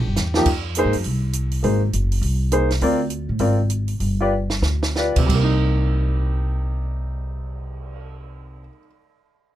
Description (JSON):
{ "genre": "jazz piano trio", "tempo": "174-205 BPM", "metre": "4/4", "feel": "swing 62% on 8ths", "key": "C minor", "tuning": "A4 = 436 Hz", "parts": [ { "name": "clear concert grand piano", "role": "melody", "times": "0.0-8.9 s", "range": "C3 to D5", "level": "-22 LUFS", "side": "equal", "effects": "none" }, { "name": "upright bass", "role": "bass", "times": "0.0-8.7 s", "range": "Gb1 to A2", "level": "-21 LUFS", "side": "equal", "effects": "none" }, { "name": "compact cocktail drum kit", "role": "drums", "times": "0.2-8.0 s", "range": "crash cymbal, cymbal swell, hi-hat, kick drum, snare drum", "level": "-27 LUFS", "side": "right 2 dB", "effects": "none" } ], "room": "little or no reverb", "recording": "close, detailed microphones", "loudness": "-18 LUFS", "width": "side -12 dB against mid", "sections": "0.5-5.3 A section; 5.3-8.1 B section", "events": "drum fill 0.2, 4.3-5.0; slowing down 2.8-5.3", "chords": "0.5 F5; 1.6 Ab7; 2.8 Dm7b5; 4.0 G7; 5.3 Cm7" }